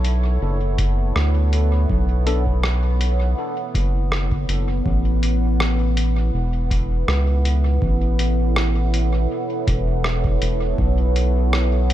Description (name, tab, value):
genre	ambient dub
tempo	81 BPM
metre	4/4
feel	swing 54% on 16ths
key	unclear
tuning	A4 = 440 Hz
part	deep dark ambient pad	sustained chords	0.0-11.9 s	B3 to C#5	-25 LUFS	equal	chorus, built-in reverb
part	round analog bass	bass	0.0-11.9 s	E1 to D2	-19 LUFS	equal	none
part	lo-fi sampler-style drum kit	drums	0.0-11.9 s	hi-hat, rim click	-27 LUFS	equal	dub echo
part	electronic kick drum	drums	0.8-10.9 s	none	-24 LUFS	equal	none
part	bell-like tine electric piano	stabs	2.3-2.4 s	B3 to A4	-33 LUFS	left 4 dB	phaser, dub echo
room	little or no reverb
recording	none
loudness	-17 LUFS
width	side -13 dB against mid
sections	0.0-4.9 A section; 4.9-11.9 B section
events	none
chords	0.0 Bm7; 4.9 A; 10.8 B7(no3)